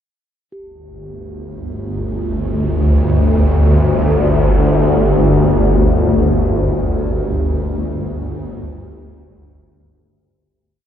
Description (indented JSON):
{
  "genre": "dark ambient drone",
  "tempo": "free time",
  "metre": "none",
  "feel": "none",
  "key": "unclear",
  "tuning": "A4 = 440 Hz",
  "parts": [
    { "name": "swarming drone", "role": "drone", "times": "1.6-10.8 s", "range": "G1 to D2", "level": "-13 LUFS", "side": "equal", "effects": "built-in reverb" },
    { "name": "quartz singing bowl", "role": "texture", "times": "0.5-10.7 s", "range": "G4", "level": "-34 LUFS", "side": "equal", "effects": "none" }
  ],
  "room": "moderate huge ambient reverb, RT60 8.3 s",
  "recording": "none",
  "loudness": "-13 LUFS",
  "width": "side -10 dB against mid",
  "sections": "0.5-10.7 A section",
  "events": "fade-out 5.6-10.7",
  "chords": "0.5 G5",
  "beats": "free time"
}